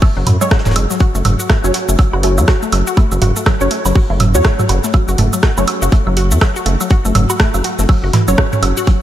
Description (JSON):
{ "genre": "minimal techno", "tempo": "122 BPM", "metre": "4/4", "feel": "swing 59% on 16ths", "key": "F# minor", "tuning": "A4 = 440 Hz", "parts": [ { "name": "resonant blip pluck", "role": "riff", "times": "0.0-8.9 s", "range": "E3 to F#4", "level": "-20 LUFS", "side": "left 1 dB", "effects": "chorus, cassette tape, sidechain pumping, ping-pong delay" }, { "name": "electronic kick drum", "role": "drums", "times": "0.0-9.0 s", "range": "none", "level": "-12 LUFS", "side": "equal", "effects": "studio reverb" }, { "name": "vintage brush drum kit", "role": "drums", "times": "0.0-9.0 s", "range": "hi-hat, snare drum", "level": "-31 LUFS", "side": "equal", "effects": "none" }, { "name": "electronic woodblock and toms", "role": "percussion", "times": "0.0-8.7 s", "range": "none", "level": "-19 LUFS", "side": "right 2 dB", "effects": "studio reverb, analog delay" }, { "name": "rubbery square bass", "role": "bass", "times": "0.2-8.7 s", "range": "E1 to F#2", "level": "-15 LUFS", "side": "equal", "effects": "sidechain pumping" }, { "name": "garage drum kit", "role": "drums", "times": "0.3-8.9 s", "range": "cabasa, hi-hat, rim click", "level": "-21 LUFS", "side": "right 1 dB", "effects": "studio reverb" }, { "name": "filtered dub chord stab", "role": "stabs", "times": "0.4-8.4 s", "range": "F#3 to C#5", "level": "-21 LUFS", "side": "right 1 dB", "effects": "phaser, ensemble chorus, analog delay" } ], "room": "light reverb", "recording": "none", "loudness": "-11 LUFS", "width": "side -12 dB against mid", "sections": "0.0-9.0 A section", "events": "none", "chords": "0.0 F#5", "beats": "0.02 0.51 | 1.00 1.50 1.99 2.48 | 2.97 3.46 3.96 4.45 | 4.94 5.43 5.92 6.41 | 6.91 7.40 7.89 8.38 | 8.87" }